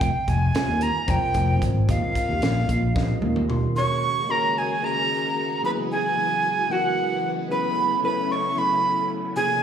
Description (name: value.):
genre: electric jazz fusion.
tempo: 225 BPM (eighths).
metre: 7/8.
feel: straight.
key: G# minor from 3.8 s.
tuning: A4 = 440 Hz.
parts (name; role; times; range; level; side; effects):
breathy bright jazz flute; melody; 0.0-9.6 s; F5 to C#6; -24 LUFS; right 2 dB; slapback echo, analog delay.
overdriven tine electric piano; accompaniment; 0.0-9.6 s; B#2 to C6; -30 LUFS; left 1 dB; wide subtle chorus, slapback echo.
fretless electric bass; bass; 0.0-3.7 s; F1 to Eb2; -22 LUFS; equal; ensemble chorus.
crisp fusion drum kit; drums; 0.0-3.6 s; hi-hat, kick drum, snare drum, toms; -27 LUFS; right 1 dB; none.
vintage hollow-body jazz guitar; second line; 3.8-9.6 s; F#4 to C#5; -31 LUFS; equal; slapback echo.
phased string machine; sustained chords; 3.8-9.6 s; C#3 to C#5; -32 LUFS; left 1 dB; ensemble chorus, phaser.
room: light reverb, studio ambience.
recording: live gig heard through the venue's PA, club reverb.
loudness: -20 LUFS.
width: side -8 dB against mid.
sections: 0.0-3.8 A section; 3.8-9.6 B section.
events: drum fill 3.0-3.8; tine electric piano fill 3.0-3.8.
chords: 0.0 Fm9; 1.9 Eb69; 3.8 G#9sus4; 5.6 F#9sus4; 7.5 B9sus4.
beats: | 0.02 0.28 0.55 0.82 1.09 1.35 1.62 | 1.89 2.16 2.42 2.69 2.96 3.23 3.49 | 3.76 4.03 4.29 4.56 4.83 5.09 5.36 | 5.63 5.90 6.16 6.43 6.70 6.96 7.23 | 7.50 7.77 8.03 8.30 8.57 8.84 9.10 | 9.37.